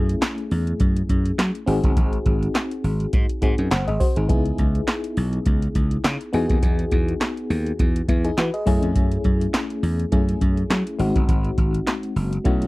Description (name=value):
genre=early-eighties boogie funk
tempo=103 BPM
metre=4/4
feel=swing 56% on 16ths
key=unclear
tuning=A4 = 444 Hz
part: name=FM electric piano with tremolo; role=accompaniment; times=0.0-12.7 s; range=G#3 to F#5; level=-26 LUFS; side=left 2 dB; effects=none
part: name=slap bass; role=bass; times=0.0-12.7 s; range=F#1 to F#3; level=-22 LUFS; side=equal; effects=none
part: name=electro analog drum machine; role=drums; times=0.1-12.7 s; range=handclaps, hi-hat, kick drum, snare drum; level=-21 LUFS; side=equal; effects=none
room=little or no reverb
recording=dry, close 1970s-style studio recording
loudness=-19 LUFS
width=side -20 dB against mid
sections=0.0-12.7 A section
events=none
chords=0.0 F#m9; 1.7 G#7; 4.3 C#m9; 6.3 Emaj9; 8.7 F#m9; 11.0 G#7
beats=0.22 0.80 1.38 | 1.97 2.55 3.13 3.71 | 4.30 4.88 5.46 6.04 | 6.63 7.21 7.79 8.38 | 8.96 9.54 10.12 10.71 | 11.29 11.87 12.45